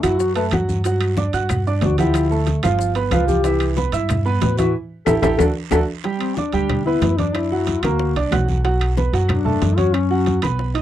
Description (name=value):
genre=Afro-Cuban jazz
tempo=185 BPM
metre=4/4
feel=straight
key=G major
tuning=A4 = 441 Hz
part: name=mellow duduk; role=second line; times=0.0-10.4 s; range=C4 to B4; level=-22 LUFS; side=left 8 dB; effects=none
part: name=clear grand piano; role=accompaniment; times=0.0-10.8 s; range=E3 to F#6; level=-22 LUFS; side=right 4 dB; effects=none
part: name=upright bass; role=bass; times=0.0-10.8 s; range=G1 to A2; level=-21 LUFS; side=equal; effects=none
part: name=bongos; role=percussion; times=0.0-10.8 s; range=none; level=-29 LUFS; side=left 9 dB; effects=none
part: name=claves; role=percussion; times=0.0-10.6 s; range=none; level=-32 LUFS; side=left 16 dB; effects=none
part: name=congas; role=percussion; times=0.0-10.8 s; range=none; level=-25 LUFS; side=equal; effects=none
part: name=guiro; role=percussion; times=0.0-10.8 s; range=none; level=-40 LUFS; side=right 19 dB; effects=none
part: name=maracas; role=percussion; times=0.0-5.8 s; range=none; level=-39 LUFS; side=left 16 dB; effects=none
part: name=timbales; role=percussion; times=0.0-10.8 s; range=none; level=-28 LUFS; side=right 8 dB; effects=none
room=light reverb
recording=dry, close 1970s-style studio recording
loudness=-16 LUFS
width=side -12 dB against mid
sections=0.0-6.0 A section; 6.0-10.8 A section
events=duduk solo 0.0-6.0, 6.0-10.8; drum fill 4.7-6.0; band accent 4.7-6.0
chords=0.0 D (rootless); 0.8 G5; 2.1 Dmadd9; 2.8 G7; 3.4 Cmaj7; 4.7 A5; 5.4 D; 6.0 Gmaj7; 7.3 F#aug7; 8.6 Bm7; 9.9 F#sus4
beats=0.20 0.52 | 0.85 1.17 1.50 1.82 | 2.15 2.47 2.80 3.12 | 3.45 3.77 4.10 4.42 | 4.75 5.07 5.40 5.72 | 6.05 6.37 6.70 7.02 | 7.35 7.67 8.00 8.32 | 8.65 8.97 9.30 9.62 | 9.95 10.27 10.60